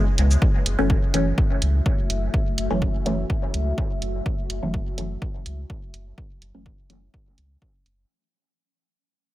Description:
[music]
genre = dub techno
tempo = 125 BPM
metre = 4/4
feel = swing 53% on 16ths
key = F# minor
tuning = A4 = 440 Hz
[part]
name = deep dark ambient pad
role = sustained chords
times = 0.0-8.1 s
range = A3 to E5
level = -34 LUFS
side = left 1 dB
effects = chorus, built-in reverb, sidechain pumping
[part]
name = warm sub bass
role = bass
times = 0.2-8.0 s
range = F#1 to C#2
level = -24 LUFS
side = equal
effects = tube saturation, sidechain pumping
[part]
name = electronic hi-hat and shaker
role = drums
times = 0.2-8.0 s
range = none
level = -28 LUFS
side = right 2 dB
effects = none
[part]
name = electronic kick drum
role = drums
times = 0.4-7.7 s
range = none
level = -23 LUFS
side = equal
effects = none
[part]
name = filtered dub chord stab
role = stabs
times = 0.8-7.1 s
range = E3 to C#4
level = -26 LUFS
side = equal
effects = phaser, sidechain pumping, dub echo
[sound]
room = digital ambience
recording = none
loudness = -20 LUFS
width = side -15 dB against mid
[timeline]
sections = 0.4-8.1 A section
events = fade-out 0.4-8.1; filter sweep on synth stab 0.4-8.1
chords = 0.4 F#m7

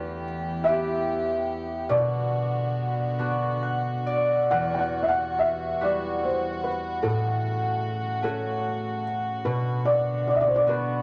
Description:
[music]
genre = celtic folk, Celtic slow air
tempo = 45-50 BPM (dotted quarters)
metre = 6/8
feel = rubato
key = E minor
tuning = A4 = 440 Hz
[part]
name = felt-muted upright piano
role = melody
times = 0.0-11.0 s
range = A4 to G5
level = -28 LUFS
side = equal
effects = none
[part]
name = concert harp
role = accompaniment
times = 0.0-11.0 s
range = E2 to F#5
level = -30 LUFS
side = equal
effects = none
[part]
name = warm chamber string section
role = sustained chords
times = 0.0-11.0 s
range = C#3 to G4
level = -34 LUFS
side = equal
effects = none
[sound]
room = moderate studio reverb, RT60 0.5 s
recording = none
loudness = -26 LUFS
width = mono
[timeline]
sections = 0.0-11.0 A section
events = harp fill 3.2-4.5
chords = 0.0 Em; 1.9 Bm; 4.5 Emadd9; 7.0 A6; 9.5 Bm

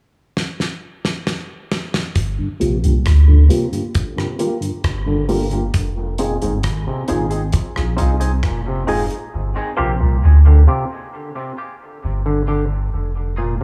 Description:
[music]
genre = dub reggae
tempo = 67 BPM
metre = 4/4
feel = straight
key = G phrygian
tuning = A4 = 440 Hz
[part]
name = damped 70s drum kit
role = drums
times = 0.4-9.3 s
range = hi-hat, kick drum, rim click, snare drum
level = -24 LUFS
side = equal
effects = none
[part]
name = soft dub sub bass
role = bass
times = 2.2-13.6 s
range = F1 to D2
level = -17 LUFS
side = equal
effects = none
[part]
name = mellow tonewheel organ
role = accompaniment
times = 2.4-5.6 s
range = G2 to F4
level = -29 LUFS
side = equal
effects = overdrive, chorus vibrato, slow rotary speaker, low-pass filter, dub echo
[part]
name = semi-hollow electric guitar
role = accompaniment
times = 2.6-9.9 s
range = Bb3 to Ab4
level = -29 LUFS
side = equal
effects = subtle chorus, high-pass filter, low-pass filter, dub echo
[part]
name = overdriven clav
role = arpeggios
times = 2.6-13.6 s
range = Ab2 to D3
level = -28 LUFS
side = equal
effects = low-pass filter, dub echo
[part]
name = percussive organ stab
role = stabs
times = 2.6-13.5 s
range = Bb3 to Bb4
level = -29 LUFS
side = equal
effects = chorus, high-pass filter, low-pass filter, dub echo
[sound]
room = light reverb, small room ambience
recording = echo-heavy mix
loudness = -18 LUFS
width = mono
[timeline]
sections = 0.0-2.2 A section; 2.2-13.6 B section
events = drum fill 0.4-2.2; filter sweep 2.2-13.6; part muted 9.3-13.6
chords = 0.0 N.C.; 2.2 Gm7; 5.7 Fm7; 9.3 Gm7; 12.9 Fm7

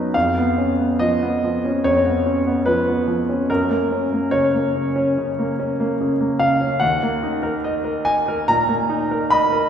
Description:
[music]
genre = classical, romantic character piece for solo piano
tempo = 72 BPM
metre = 4/4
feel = rubato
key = unclear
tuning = A4 = 436 Hz
[part]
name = clear concert grand piano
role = solo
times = 0.0-9.7 s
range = Eb2 to Cb6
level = -17 LUFS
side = equal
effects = none
[sound]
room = wet scoring stage reverb, RT60 2.2 s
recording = heard from further back in the room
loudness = -17 LUFS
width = side -8 dB against mid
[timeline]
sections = 0.0-9.7 A section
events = none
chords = 0.1 C#7/E#; 3.5 F#; 6.8 Ebm

